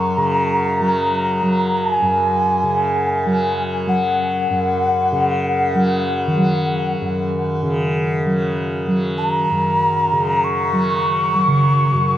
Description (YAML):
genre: world meditative, free-time meditation music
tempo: free time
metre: none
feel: none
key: F# major pentatonic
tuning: A4 = 441 Hz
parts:
  - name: breathy mellow alto ocarina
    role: melody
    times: 0.0-12.2 s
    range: F#5 to C#6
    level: -18 LUFS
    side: left 1 dB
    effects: shimmer reverb
  - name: tanpura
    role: drone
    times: 0.0-12.2 s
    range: F#2 to F#3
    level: -20 LUFS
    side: right 1 dB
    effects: none
  - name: bronze singing bowl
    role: texture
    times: 0.0-12.2 s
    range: C#3 to F#3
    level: -24 LUFS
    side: equal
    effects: none
room: wet cathedral reverb, RT60 5.5 s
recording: worn, warbling old tape, cassette tape, warbly pitch drift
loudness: -16 LUFS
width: side -12 dB against mid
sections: 0.0-12.2 A section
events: none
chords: none